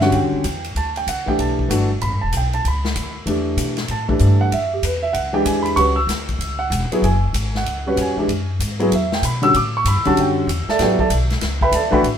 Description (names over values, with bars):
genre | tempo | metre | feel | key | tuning
modal jazz | 191 BPM | 4/4 | swing 63% on 8ths | unclear | A4 = 443 Hz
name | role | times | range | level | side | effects
warm concert grand piano | accompaniment | 0.0-12.0 s | D3 to E6 | -18 LUFS | equal | none
upright bass | bass | 0.0-12.2 s | E1 to B2 | -21 LUFS | equal | none
swinging big-band drum kit | drums | 0.0-12.1 s | hi-hat, kick drum, ride cymbal, snare drum | -26 LUFS | left 2 dB | none
room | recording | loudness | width
moderate studio reverb, RT60 0.7 s | minimal, uncompressed stereo recording | -16 LUFS | side -8 dB against mid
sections
0.0-12.2 A section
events
none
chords
0.0 A9sus4; 4.5 F#9sus4; 9.5 A9sus4